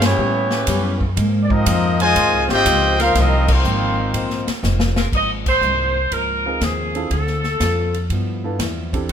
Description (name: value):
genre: jazz, big band swing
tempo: 121 BPM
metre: 4/4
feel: swing 68% on 8ths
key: Ab major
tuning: A4 = 440 Hz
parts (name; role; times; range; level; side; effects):
- mellow trumpet section; melody; 0.0-4.5 s; Bb3 to Ab5; -18 LUFS; left 1 dB; none
- bright trombone section; second line; 0.0-4.5 s; Eb3 to G4; -24 LUFS; equal; none
- picked plugged-in steel-string acoustic guitar; accompaniment; 0.0-9.0 s; G2 to A4; -28 LUFS; left 4 dB; none
- edgy saxophone section; sustained chords; 0.0-5.1 s; Ab3 to C5; -29 LUFS; left 3 dB; none
- upright bass; bass; 0.0-9.1 s; F1 to A2; -20 LUFS; equal; none
- swinging big-band drum kit; drums; 0.0-9.1 s; crash cymbal, hi-hat, kick drum, ride cymbal, snare drum; -24 LUFS; left 1 dB; none
- clear saxophone section; melody; 5.2-8.1 s; Ab4 to Eb5; -20 LUFS; right 1 dB; none
- clear baby grand piano; accompaniment; 6.5-9.1 s; B3 to Bb4; -28 LUFS; right 4 dB; none
room: light reverb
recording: minimal, uncompressed stereo recording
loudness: -16 LUFS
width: side -8 dB against mid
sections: 0.0-5.1 A section; 5.1-9.1 B section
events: band accent 0.0, 3.4, 5.4; drum fill 4.6-5.1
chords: 0.2 A9; 1.2 Ab69; 7.1 Dm7; 8.1 G13